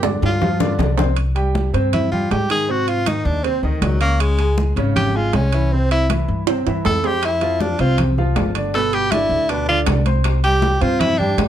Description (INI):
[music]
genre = Afro-Cuban jazz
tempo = 159 BPM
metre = 4/4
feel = straight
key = unclear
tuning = A4 = 440 Hz
[part]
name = warm baby grand piano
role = accompaniment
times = 0.0-11.5 s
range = B2 to Db6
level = -23 LUFS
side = right 2 dB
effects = none
[part]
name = upright bass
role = bass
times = 0.0-11.5 s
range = G1 to Ab2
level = -20 LUFS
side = left 1 dB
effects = none
[part]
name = bongos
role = percussion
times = 0.0-1.1, 7.2-11.5 s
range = none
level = -27 LUFS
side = left 7 dB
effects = none
[part]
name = congas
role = percussion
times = 0.0-11.5 s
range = none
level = -26 LUFS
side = left 1 dB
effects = none
[part]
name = timbales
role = percussion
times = 0.0-11.5 s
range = none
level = -25 LUFS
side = right 9 dB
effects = none
[part]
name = clear tenor saxophone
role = melody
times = 0.3-11.4 s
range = Eb3 to A4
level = -20 LUFS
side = equal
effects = none
[sound]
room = light reverb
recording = none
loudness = -16 LUFS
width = side -10 dB against mid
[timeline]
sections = 0.0-1.2 A section; 1.2-11.5 B section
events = drum fill 0.0-1.2, 6.5-7.2; tenor saxophone solo 1.2-11.5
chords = 0.4 G5; 1.2 C5; 2.7 Ab; 4.2 Db5; 5.7 C; 7.2 Fsus2; 8.7 G; 10.3 C5